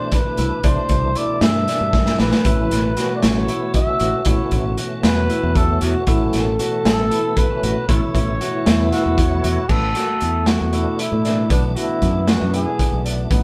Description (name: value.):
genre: progressive instrumental, band music in an uneven meter.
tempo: 232 BPM (eighths).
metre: 7/8.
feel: straight.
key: unclear.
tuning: A4 = 440 Hz.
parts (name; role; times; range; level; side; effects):
breathy trumpet; melody; 0.0-13.4 s; D4 to E5; -26 LUFS; equal; none.
tonewheel organ; accompaniment; 0.0-13.3 s; B2 to C#5; -29 LUFS; equal; chorus vibrato, slow rotary speaker.
bright grand piano; arpeggios; 0.0-13.4 s; B3 to F#4; -30 LUFS; equal; none.
raw garage drum kit; drums; 0.1-13.4 s; crash cymbal, hi-hat, kick drum, snare drum; -22 LUFS; equal; none.
modern bright fingered electric bass; bass; 0.4-13.4 s; A1 to A2; -24 LUFS; equal; none.
warm trombone; second line; 2.5-13.4 s; A3 to A4; -29 LUFS; equal; none.
room: moderate studio reverb, RT60 0.8 s.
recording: band playing live in one room.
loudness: -18 LUFS.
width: mono.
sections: 0.0-9.7 A section; 9.7-13.4 B section.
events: drum fill 1.9-2.5; tonewheel organ fill 8.9-9.7.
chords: 0.0 C6; 2.5 A6; 9.7 Asus2; 11.5 Bm.